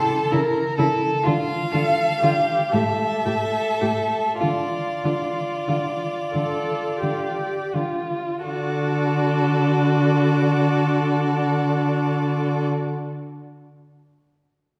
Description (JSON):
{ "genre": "classical, slow romantic movement for string quartet", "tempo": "26-45 BPM (dotted quarters)", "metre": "6/8", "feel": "rubato", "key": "D minor", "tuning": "A4 = 439 Hz", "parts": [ { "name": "rich violin", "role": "melody", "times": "0.0-12.7 s", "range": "D5 to A5", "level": "-29 LUFS", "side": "equal", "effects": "none" }, { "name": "rich violin", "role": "second line", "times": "0.0-12.7 s", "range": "F4 to Bb4", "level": "-28 LUFS", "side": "equal", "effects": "none" }, { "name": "warm viola", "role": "accompaniment", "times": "0.3-12.7 s", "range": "E4 to A4", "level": "-30 LUFS", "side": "equal", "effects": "none" }, { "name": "warm cello", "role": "bass", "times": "0.3-12.7 s", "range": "A2 to D3", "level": "-26 LUFS", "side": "equal", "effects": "none" } ], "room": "wet concert hall reverb, RT60 1.9 s", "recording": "heard from further back in the room", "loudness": "-22 LUFS", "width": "mono", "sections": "0.0-8.4 A section; 8.4-12.5 B section", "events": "slowing down 0.0-8.4", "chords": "0.0 A/C#; 1.2 Dm; 2.7 A5; 4.4 Dm; 8.4 D" }